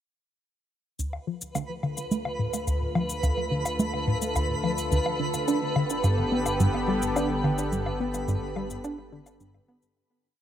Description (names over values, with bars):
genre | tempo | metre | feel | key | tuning
ambient, sequencer-driven space music | 107 BPM | 4/4 | straight | D dorian | A4 = 440 Hz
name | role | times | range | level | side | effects
lush unison pad | sustained chords | 2.3-9.9 s | D3 to A4 | -32 LUFS | left 1 dB | chorus
tight sequenced synth | riff | 1.0-9.8 s | D2 to D4 | -27 LUFS | equal | chorus, analog delay
round analog bass | bass | 1.0-9.9 s | G1 to D2 | -39 LUFS | equal | none
shaker and woodblock | percussion | 1.0-9.9 s | none | -36 LUFS | left 3 dB | overdrive, analog delay
twinkling granular texture | texture | 1.6-10.0 s | B4 | -32 LUFS | right 1 dB | built-in reverb
room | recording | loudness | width
moderate huge ambient reverb, RT60 8.4 s | none | -25 LUFS | side -10 dB against mid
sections
1.0-10.0 A section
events
fade-in on analog synth pad 1.0-10.0; fade-in on analog synth bass 1.0-10.0; filter sweep on synth arpeggio sound 1.0-10.0; fade-out 7.0-10.0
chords
1.0 Dm; 5.5 Gadd9